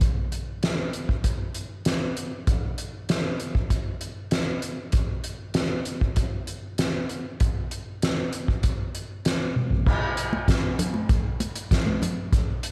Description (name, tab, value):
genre	rock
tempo	97 BPM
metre	4/4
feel	straight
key	none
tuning	none
part	soft-mallet drum kit	drums	0.0-12.7 s	crash cymbal, hi-hat, kick drum, snare drum, toms	-26 LUFS	equal	none
part	congas	percussion	10.3-12.2 s	none	-32 LUFS	equal	none
room	light reverb, small room reverb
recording	none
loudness	-26 LUFS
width	mono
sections	0.0-9.9 A section; 9.9-12.7 B section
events	drum fill 9.6-9.9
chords	none